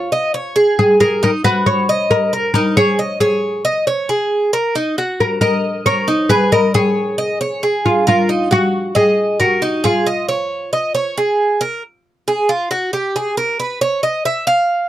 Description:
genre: latin.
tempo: 136 BPM.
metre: 4/4.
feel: straight.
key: unclear.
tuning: A4 = 440 Hz.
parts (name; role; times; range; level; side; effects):
oud; melody; 0.0-11.3 s; F4 to Db5; -15 LUFS; left 1 dB; none.
Cuban tres; arpeggios; 0.0-14.9 s; Eb4 to F5; -16 LUFS; right 1 dB; none.
room: light reverb.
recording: dry, close 1970s-style studio recording.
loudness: -14 LUFS.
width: side -12 dB against mid.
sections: 0.0-11.8 A section; 11.8-14.9 B section.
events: Cuban tres solo 11.8-14.9.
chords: 0.0 Dbsus2; 1.2 Ebm; 3.0 Dbsus2; 4.7 Ebm; 6.5 Dbsus2; 8.3 Ebm; 10.1 Dbadd9; 11.8 N.C..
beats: 0.33 0.78 | 1.22 1.66 2.10 2.54 | 2.98 3.42 3.87 4.31 | 4.75 5.19 5.63 6.07 | 6.52 6.96 7.40 7.84 | 8.28 8.72 9.17 9.61 | 10.05 10.49 10.94 11.38 | 11.82 12.26 12.71 13.15 | 13.59 14.04 14.48.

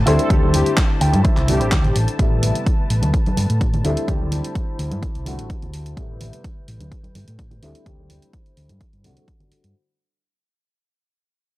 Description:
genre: filtered disco house.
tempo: 127 BPM.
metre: 4/4.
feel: straight.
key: unclear.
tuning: A4 = 440 Hz.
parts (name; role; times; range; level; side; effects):
warm baby grand piano; accompaniment; 0.0-9.7 s; C3 to G4; -26 LUFS; left 2 dB; phaser, sidechain pumping, low-pass filter.
rich chamber string section; sustained chords; 0.0-9.7 s; E4 to G6; -32 LUFS; left 2 dB; sidechain pumping, low-pass filter.
hollow-body short-scale fingered electric bass; bass; 0.0-9.7 s; A1 to A2; -21 LUFS; equal; sidechain pumping, low-pass filter.
electric guitar with an envelope filter; riff; 0.1-2.0 s; E4 to G5; -25 LUFS; right 1 dB; sidechain pumping, low-pass filter.
house drum kit; drums; 0.1-9.7 s; handclaps, hi-hat; -28 LUFS; right 1 dB; sidechain pumping on hats.
egg shaker and congas; percussion; 0.1-9.7 s; none; -27 LUFS; right 1 dB; sidechain pumping on perc, low-pass filter on perc.
analog synth brass; melody; 0.2-2.0 s; G4 to A4; -26 LUFS; left 1 dB; chorus, cassette tape, sidechain pumping, low-pass filter, analog delay.
electronic kick drum; drums; 0.3-9.4 s; none; -20 LUFS; equal; overdrive.
room: little or no reverb.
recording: dry, gritty hardware recording.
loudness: -16 LUFS.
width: side -17 dB against mid.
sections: 0.0-9.8 A section.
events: fade-out 0.0-9.8; filter sweep 0.0-9.8; clean electric guitar fill 0.8-2.2.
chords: 0.1 D9sus4; 2.2 Am9; 3.8 D9sus4; 6.0 Am9; 7.6 D9sus4.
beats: | 0.30 0.77 1.25 1.72 | 2.19 2.66 3.14 3.61 | 4.08 4.55 5.03 5.50 | 5.97 6.44 6.92 7.39 | 7.86 8.33 8.80 9.28.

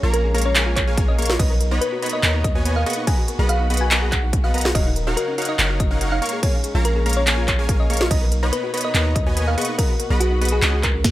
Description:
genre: future bass.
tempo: 143 BPM.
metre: 4/4.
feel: half-time.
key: unclear.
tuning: A4 = 440 Hz.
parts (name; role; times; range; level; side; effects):
dark studio string section; sustained chords; 0.0-11.1 s; Bb2 to Gb4; -34 LUFS; left 1 dB; sidechain pumping.
thumb-piano-like synth pluck; arpeggios; 0.0-11.1 s; Db4 to Cb5; -30 LUFS; left 2 dB; chorus, sidechain pumping, dub echo.
supersaw stab; riff; 0.0-10.9 s; Bb3 to Db6; -26 LUFS; equal; cassette tape, sidechain pumping.
long sustained 808-style bass; bass; 0.0-11.1 s; Eb1 to Gb2; -21 LUFS; equal; sidechain pumping.
thumb-piano-like synth pluck; melody; 0.1-11.0 s; Gb4 to Ab5; -26 LUFS; equal; chorus, sidechain pumping, dub echo.
trap drum kit; drums; 0.1-11.1 s; crash cymbal, handclaps, hi-hat, snare drum; -22 LUFS; equal; overdrive.
electronic kick drum; drums; 0.8-11.1 s; none; -20 LUFS; equal; none.
room: digital ambience.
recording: none.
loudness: -17 LUFS.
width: side -15 dB against mid.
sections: 0.0-11.1 A section.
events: none.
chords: 0.0 Bbm7; 1.4 Abm9/Cb; 4.8 Ebm7; 6.2 Bbm7; 8.1 Abm9/Cb.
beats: 0.14 0.56 0.97 | 1.39 1.81 2.23 2.65 | 3.07 3.49 3.91 4.33 | 4.75 5.17 5.59 6.01 | 6.43 6.85 7.27 7.69 | 8.11 8.53 8.95 9.37 | 9.79 10.21 10.62 11.04.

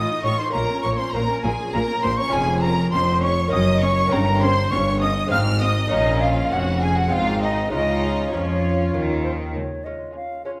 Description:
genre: classical, baroque-style concerto movement with solo episodes.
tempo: 100 BPM.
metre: 3/4.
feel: straight.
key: Db major.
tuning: A4 = 440 Hz.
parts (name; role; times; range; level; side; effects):
rich chamber violin section; melody; 0.0-10.6 s; Ab4 to F6; -32 LUFS; equal; none.
silver concert flute; melody; 0.0-10.5 s; C5 to F6; -27 LUFS; equal; none.
warm chamber violin section; second line; 0.0-10.6 s; Db4 to F5; -30 LUFS; equal; none.
lute; accompaniment; 0.0-10.6 s; F2 to F4; -31 LUFS; equal; none.
rich chamber viola section; accompaniment; 0.0-10.6 s; Bb3 to F4; -32 LUFS; equal; none.
rich chamber double bass section; bass; 0.0-10.0 s; F1 to F2; -28 LUFS; equal; none.
rich studio cello section; bass; 0.0-10.0 s; Db2 to F3; -27 LUFS; equal; none.
room: wet recital hall reverb, RT60 1.5 s.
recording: none.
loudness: -21 LUFS.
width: mono.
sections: 0.0-9.6 A section; 9.6-10.6 B section.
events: none.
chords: 0.0 F7/A; 0.5 Bbm; 2.3 Db/F; 3.5 Ebm7/Gb; 4.1 Eb7/G; 5.3 Ab; 5.9 Bbm; 7.1 Ab; 7.7 Db.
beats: | 0.54 1.14 1.74 | 2.33 2.93 3.52 | 4.12 4.72 5.32 | 5.92 6.52 7.12 | 7.73 8.34 8.95 | 9.55 10.15.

